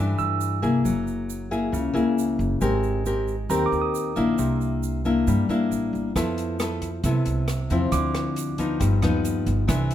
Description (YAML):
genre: bossa nova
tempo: 136 BPM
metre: 4/4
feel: straight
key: unclear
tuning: A4 = 441 Hz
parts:
  - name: barky tine electric piano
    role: accompaniment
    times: 0.0-4.7, 7.9-8.8 s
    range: Bb5 to E6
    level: -30 LUFS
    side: right 9 dB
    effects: none
  - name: nylon-string guitar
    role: accompaniment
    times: 0.0-9.9 s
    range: G2 to Bb4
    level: -23 LUFS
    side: left 2 dB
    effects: none
  - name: upright bass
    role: bass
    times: 0.0-9.9 s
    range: F#1 to G2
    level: -27 LUFS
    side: right 1 dB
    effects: none
  - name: tube shaker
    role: percussion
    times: 0.2-9.9 s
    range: none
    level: -40 LUFS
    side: right 10 dB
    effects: none
  - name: open jazz drum kit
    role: drums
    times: 6.2-9.9 s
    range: hi-hat, kick drum, rim click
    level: -30 LUFS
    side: right 1 dB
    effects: none
room: light reverb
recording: minimal, uncompressed stereo recording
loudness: -21 LUFS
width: side -11 dB against mid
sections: 0.0-9.9 A section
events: none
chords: 0.0 C69; 0.9 F#9; 2.6 Abmaj9; 4.4 C9; 6.2 Fmaj7#11; 7.9 Dm9; 8.8 Gaug7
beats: 0.41 | 0.85 1.29 1.73 2.17 | 2.62 3.06 3.50 3.94 | 4.38 4.83 5.27 5.71 | 6.15 6.59 7.04 7.48 | 7.92 8.36 8.81 9.25 | 9.69